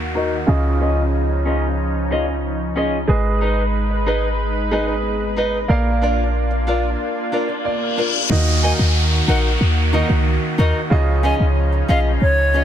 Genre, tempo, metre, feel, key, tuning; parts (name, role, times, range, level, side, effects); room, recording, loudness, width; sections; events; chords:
dancehall; 92 BPM; 4/4; straight; Eb minor; A4 = 440 Hz
warm grand piano; accompaniment; 0.0-12.6 s; Db3 to F5; -25 LUFS; right 4 dB; low-pass filter
lush unison pad; sustained chords; 0.0-12.6 s; Eb3 to Cb5; -25 LUFS; equal; chorus, low-pass filter
clean 808-style bass; bass; 0.0-12.6 s; Ab1 to Eb2; -19 LUFS; equal
downlifter and reverse cymbal; sound effects; 0.0-12.6 s; -25 LUFS; left 2 dB
nylon-string guitar; arpeggios; 0.1-12.6 s; Db4 to Eb5; -24 LUFS; left 1 dB; low-pass filter
bright concert flute; melody; 8.6-12.6 s; Db5 to Ab5; -23 LUFS; equal; ping-pong delay
light reverb, small room reverb; dense, heavily limited modern master; -16 LUFS; side -10 dB against mid
0.0-8.3 A section; 8.3-12.6 B section
filter sweep 0.0-8.3; grand piano fill 7.3-8.3; reverse cymbal 7.5-8.3
0.5 Dbadd9; 3.1 Abm; 5.7 Bb; 8.3 Ebm; 10.9 Dbadd9